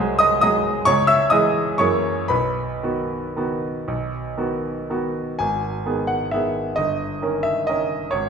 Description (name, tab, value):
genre	classical, piano waltz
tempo	112-140 BPM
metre	3/4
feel	rubato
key	B major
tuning	A4 = 441 Hz
part	bright baby grand piano	solo	0.0-8.3 s	G1 to E6	-19 LUFS	equal	none
room	wet recital hall reverb, RT60 1.5 s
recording	recorded in a church or concert hall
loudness	-19 LUFS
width	side -6 dB against mid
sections	0.0-5.4 A section; 5.4-8.3 B section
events	none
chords	0.0 G#7/B#; 0.9 C#m; 1.8 F#9; 2.3 B; 5.4 G#m; 6.8 D#7/G